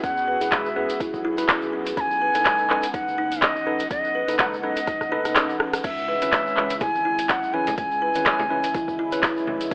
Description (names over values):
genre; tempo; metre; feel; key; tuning
afro house; 124 BPM; 4/4; swing 56% on 16ths; C# minor; A4 = 441 Hz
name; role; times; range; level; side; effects
bright reedy bansuri; melody; 0.0-9.7 s; D#5 to B5; -27 LUFS; equal; none
warm analog pad; sustained chords; 0.0-9.7 s; C#3 to F#5; -36 LUFS; equal; lush chorus, sidechain pumping
buzzing kalimba; arpeggios; 0.0-9.7 s; G#3 to B4; -33 LUFS; equal; sidechain pumping
round analog bass; bass; 0.0-9.7 s; E1 to E2; -43 LUFS; equal; sidechain pumping
afro-pop drum kit; drums; 0.0-9.7 s; crash cymbal, finger snaps, handclaps, hi-hat, rim click; -26 LUFS; equal; none
electronic kick drum; drums; 0.0-9.7 s; none; -35 LUFS; equal; none
tube shaker; percussion; 0.0-9.7 s; none; -44 LUFS; equal; none
tine electric piano; stabs; 0.4-9.7 s; C#4 to B4; -32 LUFS; equal; sidechain pumping, dub echo
congas; percussion; 6.6-9.6 s; none; -37 LUFS; equal; none
room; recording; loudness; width
moderate lush hall reverb, RT60 2.2 s; telephone sound; -23 LUFS; mono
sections
0.0-9.7 A section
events
drum fill 4.9-5.8; kick drops out 5.4-5.8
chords
0.0 E; 2.0 B7; 5.8 C#m7